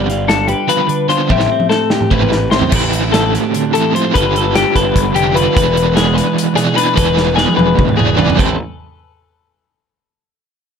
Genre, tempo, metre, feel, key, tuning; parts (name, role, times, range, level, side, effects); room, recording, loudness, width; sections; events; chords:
math rock and midwest emo; 297 BPM (eighths); 7/8; straight; A minor; A4 = 440 Hz
twelve-string electric guitar; accompaniment; 0.0-8.6 s; A2 to B4; -18 LUFS; right 7 dB
twelve-string electric guitar; arpeggios; 0.0-8.6 s; G4 to E5; -16 LUFS; left 9 dB; spring reverb
crunchy overdriven guitar; riff; 0.0-8.5 s; A2 to D5; -18 LUFS; right 2 dB; tremolo
fuzz picked electric bass; bass; 0.0-8.6 s; E1 to A1; -19 LUFS; right 1 dB; overdrive
modern studio drum kit; drums; 0.1-8.5 s; crash cymbal, hi-hat, kick drum, snare drum, toms; -17 LUFS; equal
little or no reverb; -11 LUFS; side -7 dB against mid
0.0-2.7 A section; 2.7-8.4 B section; 8.4-9.8 C section
drum fill 1.3-2.7, 7.2-8.4
0.0 G7; 1.3 Am7; 2.7 Am9; 4.1 G9; 5.6 E7; 8.4 Am9